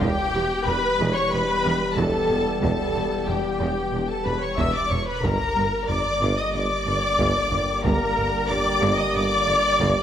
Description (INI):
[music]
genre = cinematic, hybrid orchestral and electronic film score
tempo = 92 BPM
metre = 4/4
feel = straight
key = unclear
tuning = A4 = 439 Hz
[part]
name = warm studio violin section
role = melody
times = 0.0-10.0 s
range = G5 to E6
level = -27 LUFS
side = left 3 dB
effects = none
[part]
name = warm symphonic violin section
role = second line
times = 0.0-10.0 s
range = G4 to E5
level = -30 LUFS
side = left 2 dB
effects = none
[part]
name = warm symphonic viola section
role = accompaniment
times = 0.0-10.0 s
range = G4 to E5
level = -26 LUFS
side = equal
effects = none
[part]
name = dark French horn section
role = sustained chords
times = 0.0-10.0 s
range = Bb3 to G4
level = -32 LUFS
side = left 4 dB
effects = none
[part]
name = mellow trombone section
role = sustained chords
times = 0.0-10.0 s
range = D3 to G3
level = -32 LUFS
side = right 3 dB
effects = none
[part]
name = mellow tuba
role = bass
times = 0.0-9.9 s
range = E1 to G1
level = -30 LUFS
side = right 2 dB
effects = none
[part]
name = punchy sub bass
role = bass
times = 0.0-10.0 s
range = E1 to G1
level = -36 LUFS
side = equal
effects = none
[part]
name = rich symphonic cello section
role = bass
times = 0.0-9.9 s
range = E2 to G2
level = -31 LUFS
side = right 2 dB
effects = none
[part]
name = warm studio double bass section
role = bass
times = 0.0-9.9 s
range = E1 to G1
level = -32 LUFS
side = right 3 dB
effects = none
[part]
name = taiko ensemble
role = drums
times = 0.0-10.0 s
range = none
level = -31 LUFS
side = equal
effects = none
[sound]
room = moderate scoring stage reverb, RT60 1.6 s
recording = none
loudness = -20 LUFS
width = side -9 dB against mid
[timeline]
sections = 0.0-10.0 A section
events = none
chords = 0.0 Em; 5.2 Gm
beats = | 0.02 0.67 1.32 1.98 | 2.63 3.28 3.93 4.58 | 5.24 5.89 6.54 7.19 | 7.84 8.50 9.15 9.80